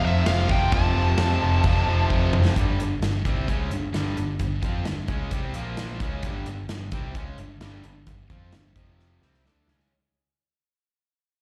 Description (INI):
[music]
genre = hard rock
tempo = 131 BPM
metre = 4/4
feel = straight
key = unclear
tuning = A4 = 440 Hz
[part]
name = bluesy overdriven lead guitar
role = melody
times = 0.0-2.1 s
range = E5 to A5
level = -30 LUFS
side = equal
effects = distortion, slapback echo, tape echo
[part]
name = overdriven electric guitar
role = riff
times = 0.0-9.9 s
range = F2 to F4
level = -33 LUFS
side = equal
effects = slapback echo
[part]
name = scooped high-gain guitar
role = riff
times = 0.0-9.9 s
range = F2 to F4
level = -38 LUFS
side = equal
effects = distortion, slapback echo
[part]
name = tight distorted guitar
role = riff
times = 0.0-2.3 s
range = F2 to C4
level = -33 LUFS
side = equal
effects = distortion, slapback echo
[part]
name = picked electric bass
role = bass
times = 0.1-9.9 s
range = F1 to F2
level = -28 LUFS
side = equal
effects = none
[part]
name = big rock drum kit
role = drums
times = 0.3-9.9 s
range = crash cymbal, hi-hat, kick drum, snare drum, toms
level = -30 LUFS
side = equal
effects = none
[sound]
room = little or no reverb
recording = live gig heard through the venue's PA, recital hall reverb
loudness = -24 LUFS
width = mono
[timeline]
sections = 0.0-2.6 A section; 2.6-9.9 B section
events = drum fill 2.1-2.6, 9.0-9.9; fade-out 2.6-9.9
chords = 0.0 F; 2.6 G5; 5.5 Bb5; 6.0 G5; 8.8 F5; 9.2 G5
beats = 0.26 | 0.72 1.18 1.64 2.10 | 2.56 3.02 3.48 3.93 | 4.39 4.85 5.31 5.77 | 6.23 6.69 7.15 7.61 | 8.07 8.53 8.99 9.45